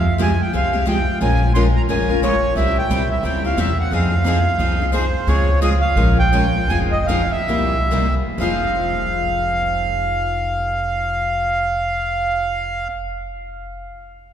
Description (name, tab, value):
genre	acoustic string swing (jazz manouche)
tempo	124-177 BPM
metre	4/4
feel	swing 60% on 8ths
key	F minor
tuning	A4 = 441 Hz
part	accordion	melody	0.0-12.9 s	C5 to C6	-21 LUFS	right 1 dB	none
part	picked steel-string acoustic guitar	accompaniment	0.0-12.9 s	C3 to C5	-25 LUFS	left 5 dB	none
part	picked steel-string acoustic guitar	accompaniment	0.0-12.9 s	C3 to Bb4	-26 LUFS	right 3 dB	none
part	upright bass	bass	0.0-12.9 s	F1 to F2	-20 LUFS	equal	none
room	wet cathedral reverb, RT60 4.8 s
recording	recorded in a church or concert hall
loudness	-16 LUFS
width	side -9 dB against mid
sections	0.0-5.3 A section; 5.3-8.4 B section; 8.4-12.3 C section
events	slowing down 5.3-8.4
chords	0.0 Fmadd9; 1.2 Bbm7; 2.6 C; 3.9 Fm7; 5.3 Dbmaj7; 6.0 Bbm7; 6.7 Fm7; 7.5 C7; 8.4 Fm7